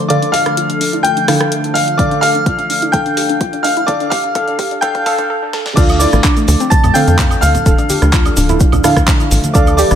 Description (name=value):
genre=progressive house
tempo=127 BPM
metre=4/4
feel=straight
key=D minor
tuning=A4 = 440 Hz
part: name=warm analog pad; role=sustained chords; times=0.0-10.0 s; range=D3 to B4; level=-23 LUFS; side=left 1 dB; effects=chorus, sidechain pumping
part: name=deep mellow chord stab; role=stabs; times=0.0-10.0 s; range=D3 to F5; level=-19 LUFS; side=right 2 dB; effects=chorus, cassette tape, sidechain pumping, dub echo
part: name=dark baby grand piano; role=melody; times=0.1-10.0 s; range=D5 to A5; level=-19 LUFS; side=left 2 dB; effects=sidechain pumping, low-pass filter, dub echo
part: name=soft synth bell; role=second line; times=0.1-10.0 s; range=D6 to A6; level=-20 LUFS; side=right 1 dB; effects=chorus, sidechain pumping, low-pass filter, dub echo
part: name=soft round pluck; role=arpeggios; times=0.1-10.0 s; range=A3 to A4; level=-20 LUFS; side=right 1 dB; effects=chorus, sidechain pumping, dub echo
part: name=deep house drum kit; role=drums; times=0.1-10.0 s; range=crash cymbal, handclaps, hi-hat, rim click, snare drum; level=-20 LUFS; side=equal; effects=none
part: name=electronic kick drum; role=drums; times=2.0-9.6 s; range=none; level=-14 LUFS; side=equal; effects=none
part: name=tight sequencer bass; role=bass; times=5.8-10.0 s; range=D1 to F2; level=-14 LUFS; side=equal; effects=tube saturation, sidechain pumping
part: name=tube shaker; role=percussion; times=5.8-10.0 s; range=none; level=-25 LUFS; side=right 3 dB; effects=none
part: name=woodblock and congas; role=percussion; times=5.9-9.9 s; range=none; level=-23 LUFS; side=right 2 dB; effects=sidechain pumping on perc
room=light reverb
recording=high-pass filter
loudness=-11 LUFS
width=side -9 dB against mid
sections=0.0-5.8 A section; 5.8-10.0 B section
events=build-up 0.0-5.8; filter sweep on synth pluck 0.0-5.8; filter sweep on synth stab 0.0-5.8; drum fill 2.0-5.3, 5.5; break 5.3-5.8; drop 5.8-10.0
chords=0.0 Dm